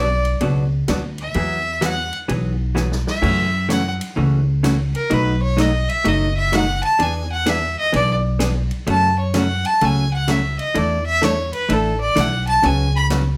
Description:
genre	country, western swing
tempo	128 BPM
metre	4/4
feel	swing 66% on 8ths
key	unclear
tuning	A4 = 440 Hz
part	clear fiddle	melody	0.0-13.1 s	A4 to B5	-22 LUFS	equal	none
part	vintage hollow-body jazz guitar	accompaniment	0.0-13.2 s	B2 to A4	-24 LUFS	equal	none
part	upright bass	bass	0.0-13.4 s	F#1 to F#2	-23 LUFS	equal	none
part	swinging big-band drum kit	drums	0.2-13.2 s	crash cymbal, hi-hat, kick drum, ride cymbal, snare drum	-33 LUFS	equal	none
room	moderate studio ambience, RT60 0.5 s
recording	none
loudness	-19 LUFS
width	mono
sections	0.0-13.4 A section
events	fiddle solo 0.0-13.4; drum fill 2.8-3.2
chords	0.0 Bm; 1.4 Eadd9; 3.2 F#m7; 5.1 B7; 7.0 E7; 8.9 F#m; 10.8 E7sus4; 12.6 C#7sus4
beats	0.41 0.88 | 1.35 1.82 2.29 2.76 | 3.23 3.70 4.17 4.64 | 5.11 5.58 6.05 6.52 | 6.99 7.46 7.93 8.40 | 8.87 9.34 9.81 10.28 | 10.75 11.22 11.70 12.16 | 12.64 13.11

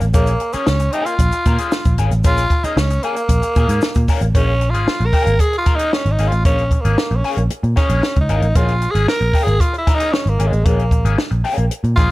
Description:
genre	funk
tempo	114 BPM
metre	4/4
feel	straight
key	Bb minor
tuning	A4 = 440 Hz
part	electric guitar at the edge of break-up	accompaniment	0.0-12.1 s	Bb3 to Bb4	-25 LUFS	left 4 dB	wah, plate reverb
part	vintage muted picked electric bass	bass	0.0-12.1 s	Ab1 to Bb2	-17 LUFS	equal	none
part	compact cocktail drum kit	drums	0.0-12.1 s	hi-hat, kick drum, snare drum	-18 LUFS	equal	none
part	egg shaker	percussion	0.0-4.3 s	none	-39 LUFS	left 1 dB	none
part	raspy tenor saxophone	melody	0.1-12.1 s	Ab3 to Bb4	-20 LUFS	right 1 dB	plate reverb
room	light reverb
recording	none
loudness	-14 LUFS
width	side -18 dB against mid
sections	0.0-4.3 A section; 4.3-12.1 B section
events	tenor saxophone solo 4.3-12.1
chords	0.0 Bbm7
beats	| 0.14 0.67 1.19 1.72 | 2.24 2.77 3.29 3.82 | 4.35 4.87 5.40 5.92 | 6.45 6.98 7.50 8.03 | 8.55 9.08 9.61 10.13 | 10.66 11.18 11.71

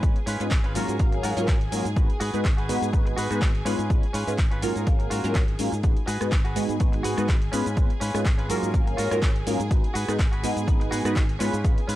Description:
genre	filtered disco house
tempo	124 BPM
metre	4/4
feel	swing 54% on 16ths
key	G# dorian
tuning	A4 = 440 Hz
part	funky polysynth comp	accompaniment	0.0-11.8 s	F#3 to E#5	-28 LUFS	equal	chorus, phaser, sidechain pumping, low-pass filter
part	rich studio string section	sustained chords	0.0-12.0 s	G#4 to G#5	-37 LUFS	equal	sidechain pumping, low-pass filter
part	direct-recorded clean electric guitar	riff	0.0-12.0 s	C#4 to G#5	-33 LUFS	equal	wide subtle chorus, sidechain pumping, low-pass filter
part	fingered electric bass	bass	0.0-12.0 s	G#1 to G#2	-30 LUFS	equal	sidechain pumping, low-pass filter
part	electronic kick drum	drums	0.0-11.7 s	none	-22 LUFS	equal	none
part	punchy analog drum machine	drums	0.0-12.0 s	handclaps, hi-hat, rim click, shaker	-34 LUFS	equal	sidechain pumping on hats, sidechain pumping on cymbals, sidechain pumping on perc
room	little or no reverb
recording	dry, gritty hardware recording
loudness	-21 LUFS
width	side -15 dB against mid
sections	0.0-12.0 A section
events	clean electric guitar fill 1.0-2.0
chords	0.0 C#7/G#; 0.8 F#maj7/G#; 2.0 G#m7; 3.7 C#7/G#; 4.6 F#maj7/G#; 5.8 G#m7; 7.5 C#7/G#; 8.5 F#maj7/G#; 9.7 G#m7; 11.4 C#7/G#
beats	| 0.03 0.51 1.00 1.48 | 1.97 2.45 2.93 3.42 | 3.90 4.38 4.87 5.35 | 5.84 6.32 6.80 7.29 | 7.77 8.26 8.74 9.22 | 9.71 10.19 10.68 11.16 | 11.64

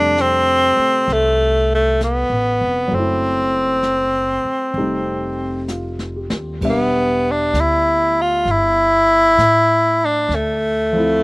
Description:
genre	jazz ballad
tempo	65 BPM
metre	4/4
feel	swing 68% on 8ths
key	unclear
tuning	A4 = 441 Hz
part	breathy tenor saxophone	melody	0.0-11.2 s	A3 to F4	-15 LUFS	equal	none
part	warm grand piano	accompaniment	0.0-11.2 s	C3 to E5	-24 LUFS	equal	none
part	upright bass	bass	0.0-11.2 s	E1 to A2	-24 LUFS	equal	none
part	jazz brush drum kit	drums	0.2-11.2 s	brushed snare drum, hi-hat, kick drum, ride cymbal, snare drum	-29 LUFS	equal	none
room	little or no reverb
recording	recorded outdoors, with no room sound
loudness	-14 LUFS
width	side -25 dB against mid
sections	0.0-11.2 A section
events	drum fill 5.7-6.6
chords	0.0 F6; 2.9 F#m7b5; 4.8 F9; 6.6 Em7; 10.3 Dm9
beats	0.17 1.08 2.00 | 2.91 3.83 4.75 5.68 | 6.62 7.55 8.47 9.39 | 10.31 11.22

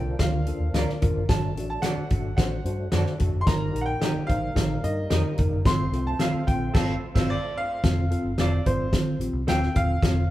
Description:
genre	uptempo 1960s-style soul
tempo	110 BPM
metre	4/4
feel	straight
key	unclear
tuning	A4 = 437 Hz
part	bright grand piano	melody	0.0-10.3 s	C5 to C6	-31 LUFS	equal	none
part	mellow reed electric piano	accompaniment	0.0-10.2 s	C4 to C5	-31 LUFS	left 2 dB	medium tremolo
part	percussive tonewheel organ	sustained chords	0.0-7.8 s	F3 to F4	-40 LUFS	right 1 dB	overdrive, chorus vibrato, slow rotary speaker
part	vintage muted fingered electric bass	bass	0.0-10.3 s	Eb1 to G2	-28 LUFS	equal	none
part	natural country drum kit	drums	0.2-10.2 s	crash cymbal, hi-hat, kick drum, snare drum	-25 LUFS	equal	none
part	electric guitar through a small old amp	stabs	0.7-9.6 s	F4 to F5	-36 LUFS	right 2 dB	spring reverb
room	moderate large studio reverb, RT60 1.4 s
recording	band playing live in one room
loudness	-22 LUFS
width	side -14 dB against mid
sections	0.0-7.8 A section; 7.8-10.3 B section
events	band accent 6.7-7.8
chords	0.0 Bb; 1.3 D/G; 3.5 Eb/G; 5.7 F/G; 7.8 F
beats	0.21 0.75 | 1.30 1.84 2.38 2.93 | 3.48 4.02 4.57 5.11 | 5.66 6.20 6.75 7.29 | 7.84 8.38 8.93 9.47 | 10.02

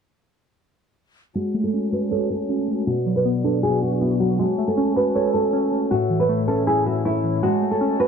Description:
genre	hip hop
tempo	158 BPM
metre	4/4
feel	half-time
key	F# minor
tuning	A4 = 440 Hz
part	nylon-string guitar	melody	1.4-8.1 s	E4 to C#5	-23 LUFS	equal	low-pass filter, ping-pong delay
part	muted felt-like synth keys	accompaniment	1.4-8.1 s	A2 to A4	-21 LUFS	right 1 dB	chorus, low-pass filter
part	breathy mellow flute section	sustained chords	1.4-8.1 s	F#4 to A5	-31 LUFS	left 1 dB	low-pass filter
room	light reverb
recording	dark, warm production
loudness	-19 LUFS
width	side -6 dB against mid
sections	1.4-8.1 A section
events	filter sweep 1.4-8.1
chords	1.4 F#madd9; 2.9 Bm; 4.4 F#madd9; 5.9 A; 7.4 F#madd9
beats	| 1.35 1.73 2.11 2.49 | 2.87 3.25 3.63 4.01 | 4.39 4.77 5.15 5.53 | 5.91 6.29 6.67 7.05 | 7.43 7.81

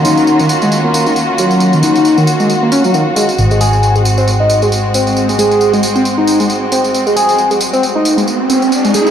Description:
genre	breakbeat, breaks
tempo	135 BPM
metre	4/4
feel	swing 56% on 16ths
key	unclear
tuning	A4 = 439 Hz
part	dark studio string section	sustained chords	0.0-9.1 s	Eb3 to Gb4	-15 LUFS	right 1 dB	low-pass filter
part	overdriven synth lead	riff	0.0-9.1 s	Eb3 to Ab4	-12 LUFS	equal	lush chorus, ping-pong delay
part	hollow-body short-scale fingered electric bass	bass	0.0-9.1 s	Ab1 to Eb2	-15 LUFS	equal	low-pass filter
part	tambourine	drums	0.0-9.1 s	none	-20 LUFS	right 1 dB	none
part	riser	sound effects	7.4-9.1 s	none	-18 LUFS	right 2 dB	none
room	moderate plate reverb, RT60 1.0 s, small room ambience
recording	played on a big sound system in a bare room, large studio reverb, faint mains hum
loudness	-9 LUFS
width	side -8 dB against mid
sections	0.0-9.1 A section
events	filter sweep on analog synth lead 0.0-9.1; riser 7.4-9.1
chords	0.0 Ebm7; 3.4 Ab7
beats	0.28 0.72 1.17 | 1.61 2.05 2.50 2.94 | 3.39 3.83 4.28 4.72 | 5.17 5.61 6.05 6.50 | 6.94 7.39 7.83 8.28 | 8.72

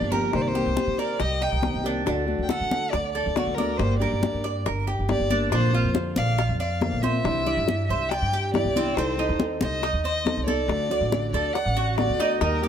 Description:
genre	latin, Cuban son and guajira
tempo	139 BPM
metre	4/4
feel	straight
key	unclear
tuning	A4 = 440 Hz
part	warm violin	melody	0.0-12.7 s	Bb4 to G5	-28 LUFS	left 1 dB	none
part	fingerpicked plugged-in steel-string acoustic guitar	accompaniment	0.0-12.7 s	C3 to A4	-30 LUFS	left 2 dB	none
part	Cuban tres	arpeggios	0.0-12.7 s	C4 to D5	-29 LUFS	right 3 dB	none
part	upright bass	bass	0.0-12.7 s	G1 to D3	-27 LUFS	right 1 dB	none
part	congas	percussion	0.1-12.7 s	none	-31 LUFS	left 3 dB	none
part	bongos	percussion	0.3-12.6 s	none	-32 LUFS	left 7 dB	none
room	light reverb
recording	none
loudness	-22 LUFS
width	side -9 dB against mid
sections	0.0-5.5 A section; 5.5-12.7 B section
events	drum fill 12.2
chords	0.3 Cm7; 2.1 D; 3.8 Gm; 5.5 Bbadd9; 7.2 Cadd9; 9.0 Adim/C; 10.7 D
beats	| 0.34 0.77 1.20 1.63 | 2.06 2.50 2.93 3.36 | 3.79 4.22 4.66 5.09 | 5.52 5.95 6.38 6.82 | 7.25 7.68 8.11 8.54 | 8.97 9.40 9.83 10.26 | 10.69 11.12 11.56 11.99 | 12.42

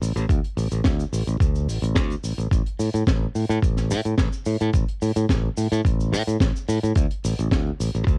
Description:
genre	nu-disco, nu disco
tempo	108 BPM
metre	4/4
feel	straight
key	unclear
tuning	A4 = 439 Hz
part	modern bright fingered electric bass	bass	0.0-8.2 s	A1 to A2	-25 LUFS	equal	none
part	tight funk drum kit	drums	0.0-8.2 s	cabasa, hi-hat, snare drum	-32 LUFS	equal	none
part	electronic kick drum	drums	0.3-8.2 s	none	-24 LUFS	equal	none
room	little or no reverb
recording	home recording on cassette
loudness	-23 LUFS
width	mono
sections	0.0-8.2 A section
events	none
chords	none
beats	| 0.29 0.85 1.40 1.96 | 2.52 3.07 3.63 4.18 | 4.74 5.29 5.85 6.40 | 6.96 7.52 8.07

